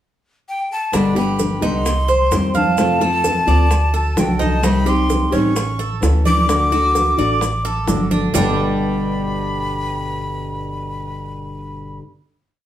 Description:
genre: latin, Cuban son and guajira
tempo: 129 BPM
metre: 4/4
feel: straight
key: G major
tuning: A4 = 440 Hz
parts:
  - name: breathy bright jazz flute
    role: melody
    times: 0.5-12.0 s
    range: G5 to D6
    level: -22 LUFS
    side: left 1 dB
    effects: slapback echo
  - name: nylon-string guitar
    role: accompaniment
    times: 0.9-12.0 s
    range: G2 to G4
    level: -21 LUFS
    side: left 2 dB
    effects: none
  - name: Cuban tres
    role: arpeggios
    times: 0.9-12.0 s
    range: G3 to F5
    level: -23 LUFS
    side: right 4 dB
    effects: none
  - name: upright bass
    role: bass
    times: 0.9-12.0 s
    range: G1 to F2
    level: -21 LUFS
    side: equal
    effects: none
  - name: bongos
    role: percussion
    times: 0.9-8.5 s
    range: none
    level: -26 LUFS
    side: left 1 dB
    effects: none
  - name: congas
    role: percussion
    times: 0.9-8.5 s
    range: none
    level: -25 LUFS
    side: right 1 dB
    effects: none
  - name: maracas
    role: percussion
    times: 0.9-8.5 s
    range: none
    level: -31 LUFS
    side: right 5 dB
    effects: none
room: wet studio reverb, RT60 0.6 s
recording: heard from further back in the room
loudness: -15 LUFS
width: side -11 dB against mid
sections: 0.0-0.9 pickup bar; 0.9-8.3 verse; 8.3-12.1 final chord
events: none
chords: 0.0 N.C.; 0.9 G; 1.9 Cm; 2.8 F; 3.7 D; 4.6 Cm; 5.6 A; 6.5 D; 8.3 G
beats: 0.00 0.47 | 0.93 1.39 1.85 2.32 | 2.78 3.24 3.71 4.17 | 4.63 5.10 5.56 6.03 | 6.49 6.95 7.42 7.88 | 8.35 8.81 9.27 9.74 | 10.20 10.66 11.13 11.59

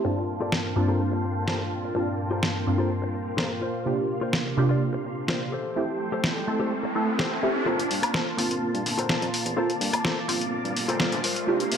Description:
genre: filtered disco house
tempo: 126 BPM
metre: 4/4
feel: straight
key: G dorian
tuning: A4 = 440 Hz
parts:
  - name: funky polysynth comp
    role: accompaniment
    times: 0.0-11.8 s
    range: G2 to A5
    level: -27 LUFS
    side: right 1 dB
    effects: chorus, phaser, low-pass filter
  - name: string machine, full ensemble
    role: sustained chords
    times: 0.0-11.8 s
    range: Bb3 to D6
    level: -33 LUFS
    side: equal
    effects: ensemble chorus, low-pass filter
  - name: direct-recorded clean electric guitar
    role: riff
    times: 0.0-11.8 s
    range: F4 to D5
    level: -32 LUFS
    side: left 5 dB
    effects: low-pass filter
  - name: dusty soul sampler-style drum kit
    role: drums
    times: 0.5-11.8 s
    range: hi-hat, snare drum, woodblock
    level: -27 LUFS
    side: equal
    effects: none
  - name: riser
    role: sound effects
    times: 5.6-11.8 s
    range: none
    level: -34 LUFS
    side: right 2 dB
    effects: none
  - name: fingered electric bass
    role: bass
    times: 7.7-11.8 s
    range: G1 to C3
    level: -34 LUFS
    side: equal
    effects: high-pass filter, low-pass filter
room: moderate echo chamber reverb, RT60 1.4 s, digital ambience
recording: none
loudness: -24 LUFS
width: side -7 dB against mid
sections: 0.0-7.7 A section; 7.7-11.8 B section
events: filter sweep 0.0-7.7, 7.7-11.8; riser 5.6-7.7, 7.7-11.8; build-up 7.7-11.8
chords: 0.1 Gm11; 3.6 C7sus4; 5.5 Am7; 7.7 Gm11; 11.2 C7sus4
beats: | 0.05 0.53 1.01 1.48 | 1.96 2.44 2.91 3.39 | 3.86 4.34 4.82 5.29 | 5.77 6.24 6.72 7.20 | 7.67 8.15 8.62 9.10 | 9.58 10.05 10.53 11.01 | 11.48

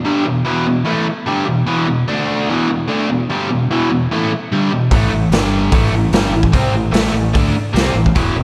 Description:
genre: blues rock power trio and southern rock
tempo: 148 BPM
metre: 4/4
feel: straight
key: unclear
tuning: A4 = 439 Hz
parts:
  - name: biting overdriven guitar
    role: riff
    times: 0.0-8.4 s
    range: E2 to D4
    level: -18 LUFS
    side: equal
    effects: slapback echo
  - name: growling fingered electric bass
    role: bass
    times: 4.9-8.4 s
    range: E1 to D2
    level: -22 LUFS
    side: equal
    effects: overdrive
  - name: raw garage drum kit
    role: drums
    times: 4.9-8.3 s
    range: hi-hat, kick drum, snare drum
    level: -18 LUFS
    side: equal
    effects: none
room: moderate scoring stage reverb, RT60 2.0 s, small room ambience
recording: big arena sound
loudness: -16 LUFS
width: mono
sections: 0.0-8.4 A section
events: none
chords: 0.0 E5; 2.1 D5; 2.5 E5; 4.9 A5; 5.3 G5; 5.7 A5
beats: | 0.05 0.45 0.86 1.26 | 1.67 2.08 2.48 2.89 | 3.29 3.70 4.11 4.51 | 4.92 5.32 5.73 6.14 | 6.54 6.95 7.36 7.76 | 8.17

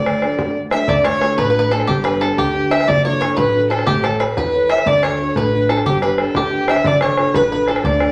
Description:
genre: celtic folk, Celtic jig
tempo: 121 BPM (dotted quarters)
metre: 6/8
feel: straight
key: D major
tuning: A4 = 435 Hz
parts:
  - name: dark fiddle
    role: melody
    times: 0.0-8.1 s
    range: G4 to E5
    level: -21 LUFS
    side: equal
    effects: none
  - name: bluegrass banjo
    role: second line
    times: 0.0-8.1 s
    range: G4 to E5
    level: -24 LUFS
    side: equal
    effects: none
  - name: dark upright piano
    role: accompaniment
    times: 0.0-8.1 s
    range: D2 to C#5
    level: -25 LUFS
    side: equal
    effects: none
  - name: rich cello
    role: drone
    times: 0.0-0.9 s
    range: D2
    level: -39 LUFS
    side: equal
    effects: none
  - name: bodhran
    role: percussion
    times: 0.1-8.1 s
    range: none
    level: -23 LUFS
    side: equal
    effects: none
  - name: upright bass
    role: bass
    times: 0.9-8.1 s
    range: F#1 to E2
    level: -28 LUFS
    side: equal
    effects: none
room: wet studio reverb, RT60 0.8 s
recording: none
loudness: -17 LUFS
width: mono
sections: 0.9-8.1 A section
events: none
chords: 0.0 D; 1.9 G; 2.9 D/F#; 3.9 Aadd9; 4.9 D; 5.9 G; 6.8 D/F#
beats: 0.39 | 0.89 1.39 | 1.88 2.38 | 2.88 3.37 | 3.87 4.37 | 4.86 5.36 | 5.86 6.35 | 6.85 7.35 | 7.84

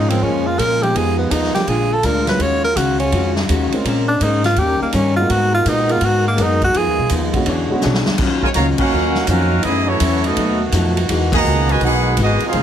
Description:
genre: jazz, big band swing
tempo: 166 BPM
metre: 4/4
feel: swing 66% on 8ths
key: Eb minor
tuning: A4 = 439 Hz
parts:
  - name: breathy tenor saxophone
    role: melody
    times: 0.0-7.1 s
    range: Bb3 to Db5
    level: -18 LUFS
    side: right 1 dB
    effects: none
  - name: archtop guitar, miked and amplified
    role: accompaniment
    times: 0.0-12.6 s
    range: F2 to C#5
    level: -22 LUFS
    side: left 5 dB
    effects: none
  - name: clear trombone section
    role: sustained chords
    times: 0.0-12.6 s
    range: C#3 to Bb4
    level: -26 LUFS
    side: right 2 dB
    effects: none
  - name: upright bass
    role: bass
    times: 0.0-12.6 s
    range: F1 to Bb2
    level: -20 LUFS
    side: equal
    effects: none
  - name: dark grand piano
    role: accompaniment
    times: 0.1-8.2 s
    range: D3 to Ab4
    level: -23 LUFS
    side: right 2 dB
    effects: none
  - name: swinging big-band drum kit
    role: drums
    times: 0.1-12.6 s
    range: crash cymbal, hi-hat, kick drum, ride cymbal, snare drum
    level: -24 LUFS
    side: equal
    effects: none
  - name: clear trumpet section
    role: melody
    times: 8.4-12.6 s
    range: A3 to Bb5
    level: -19 LUFS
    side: right 1 dB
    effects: none
  - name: clear trombone section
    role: second line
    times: 8.4-12.6 s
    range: B2 to F#4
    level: -22 LUFS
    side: right 3 dB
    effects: none
room: moderate club reverb, RT60 0.6 s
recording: heavily compressed radio sound, multiband compression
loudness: -14 LUFS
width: side -9 dB against mid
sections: 0.0-8.2 A section; 8.2-12.6 B section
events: tenor saxophone solo 0.0-8.2; drum fill 7.8-8.2; band accent 8.7, 11.3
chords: 0.0 Bbm7; 0.9 Fm7b5; 1.7 Bb7; 2.4 Ebm11; 3.8 Bbm9; 4.6 Eb7; 5.3 Abm9; 6.7 Fm7b5; 7.5 E13; 8.2 Ebm9; 9.6 Gbm7; 10.4 B7; 11.1 Emaj9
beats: 0.22 0.59 | 0.95 1.31 1.67 2.04 | 2.40 2.76 3.12 3.48 | 3.85 4.21 4.57 4.93 | 5.29 5.66 6.02 6.38 | 6.74 7.11 7.47 7.83 | 8.19 8.55 8.92 9.28 | 9.64 10.00 10.37 10.73 | 11.09 11.45 11.82 12.18 | 12.54

